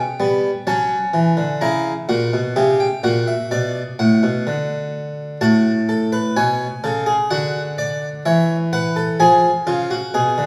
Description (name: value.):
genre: classical, baroque-style 3-part fugue for harpsichord.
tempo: 63 BPM.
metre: 4/4.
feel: straight.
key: B minor.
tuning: A4 = 441 Hz.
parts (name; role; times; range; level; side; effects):
harpsichord; solo; 0.0-10.5 s; A2 to A#5; -19 LUFS; equal; none.
room: wet recital hall reverb, RT60 1.7 s.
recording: none.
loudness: -19 LUFS.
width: mono.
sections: 0.0-10.5 A section.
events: none.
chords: 0.0 C#m7b5; 1.6 A#dim7; 3.5 Bm; 5.4 F#m/A; 7.3 Dmaj9; 9.2 Fdim.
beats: 0.67 | 1.62 2.57 3.51 4.46 | 5.41 6.36 7.30 8.25 | 9.19 10.13.